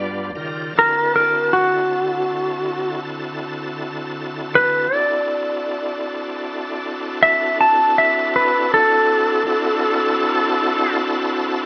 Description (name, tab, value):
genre	blues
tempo	53 BPM (dotted quarters)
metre	12/8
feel	straight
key	unclear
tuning	A4 = 439 Hz
part	clean lap steel guitar	melody	0.0-11.0 s	F#4 to A5	-19 LUFS	equal	none
part	bright tonewheel organ	sustained chords	0.0-11.7 s	G2 to A5	-26 LUFS	equal	slow rotary speaker, overdrive, chorus vibrato
room	moderate studio reverb, RT60 0.8 s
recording	band playing live in one room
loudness	-19 LUFS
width	mono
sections	0.0-11.7 A section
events	electric slide guitar solo 0.0-11.7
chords	0.4 D9